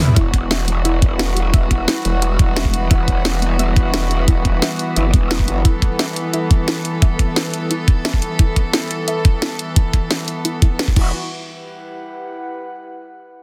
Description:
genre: dark technical drum and bass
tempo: 175 BPM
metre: 4/4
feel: straight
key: E minor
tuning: A4 = 440 Hz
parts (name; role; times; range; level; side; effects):
- rich chamber string section; sustained chords; 0.0-11.1 s; E3 to A4; -27 LUFS; equal; sidechain pumping
- drum and bass drum kit; drums; 0.1-11.0 s; crash cymbal, hi-hat, snare drum, toms; -23 LUFS; equal; none
- warbly dusty pluck; arpeggios; 0.2-11.1 s; E4 to E5; -31 LUFS; equal; chorus, sidechain pumping, tape echo
- growl bass; bass; 0.2-5.6, 11.0-11.1 s; E1 to G1; -21 LUFS; equal; chorus, overdrive
- electronic kick drum; drums; 0.2-11.0 s; none; -17 LUFS; equal; none
- airy breathy pad; texture; 0.6-12.5 s; G3 to F#5; -32 LUFS; equal; chorus, sidechain pumping
room: digital ambience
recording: dense, heavily limited modern master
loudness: -17 LUFS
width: mono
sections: 0.2-11.1 A section; 11.1-12.5 B section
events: drum fill 0.0; fade-out on analog synth pad 0.2-11.1; filter sweep on synth arpeggio sound 0.2-11.1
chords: 0.2 Emadd9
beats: | 0.17 0.51 0.85 1.19 | 1.54 1.88 2.22 2.56 | 2.91 3.25 3.59 3.94 | 4.28 4.62 4.96 5.31 | 5.65 5.99 6.34 6.68 | 7.02 7.37 7.71 8.05 | 8.39 8.74 9.08 9.42 | 9.77 10.11 10.45 10.79 | 11.14 11.48 11.82 12.16

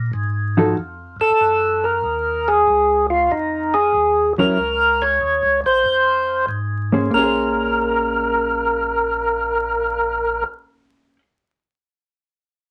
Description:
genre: jazz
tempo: 94 BPM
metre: 4/4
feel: swing 66% on 8ths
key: Bb minor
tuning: A4 = 440 Hz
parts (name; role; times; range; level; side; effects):
- tonewheel organ; bass; 0.0-10.4 s; Bb1 to Bb2; -30 LUFS; equal; overdrive, slow rotary speaker
- hollow-body jazz guitar; accompaniment; 0.6-11.2 s; F3 to C5; -22 LUFS; equal; none
- percussive tonewheel organ; melody; 1.2-10.4 s; Eb4 to Db5; -19 LUFS; equal; slow rotary speaker, overdrive
room: wet studio ambience, RT60 0.5 s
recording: vinyl crackle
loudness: -19 LUFS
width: mono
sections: 0.0-2.0 A section; 2.0-7.1 B section; 7.1-9.7 C section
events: none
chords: 0.0 Bb7(no3); 0.8 F; 2.0 Db69; 3.3 F7sus4; 4.6 Bbmadd9; 5.9 Fsus4; 7.1 Bbm9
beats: 0.13 0.77 1.40 | 2.04 2.67 3.31 3.94 | 4.58 5.22 5.85 6.49 | 7.12 7.76 8.40 9.03

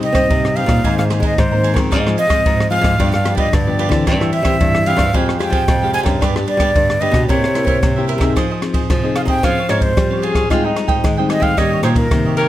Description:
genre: samba and choro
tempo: 112 BPM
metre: 4/4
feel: straight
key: F minor from 8.4 s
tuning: A4 = 441 Hz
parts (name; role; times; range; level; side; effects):
- breathy concert flute; melody; 0.0-12.3 s; Bb4 to Ab5; -19 LUFS; right 1 dB; none
- cavaquinho; accompaniment; 0.0-12.5 s; D4 to Bb5; -24 LUFS; right 5 dB; none
- nylon-string guitar; accompaniment; 0.0-12.5 s; G2 to Ab4; -21 LUFS; left 4 dB; none
- compact cocktail drum kit; drums; 0.0-12.5 s; kick drum, ride cymbal, rim click; -18 LUFS; right 1 dB; none
- nylon-string guitar; bass; 0.1-12.5 s; F2 to C4; -19 LUFS; equal; none
- breathy tenor saxophone; second line; 10.2-12.5 s; Eb4 to Bb4; -20 LUFS; left 2 dB; none
room: light reverb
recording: close, detailed microphones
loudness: -13 LUFS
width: side -13 dB against mid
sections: 0.0-8.4 A section; 8.4-12.5 B section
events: none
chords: 0.0 Cm; 0.8 Abadd9; 1.9 Fm/Ab; 3.0 G7; 4.1 C/G; 5.1 Fmadd9; 6.2 G; 7.3 C7; 8.4 Fm7; 9.4 Dbmaj7; 10.5 Abmaj7; 11.6 Eb7/G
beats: 0.31 0.85 1.39 | 1.92 2.46 3.00 3.54 | 4.07 4.61 5.15 5.68 | 6.22 6.76 7.29 7.83 | 8.36 8.90 9.44 9.97 | 10.51 11.04 11.58 12.11

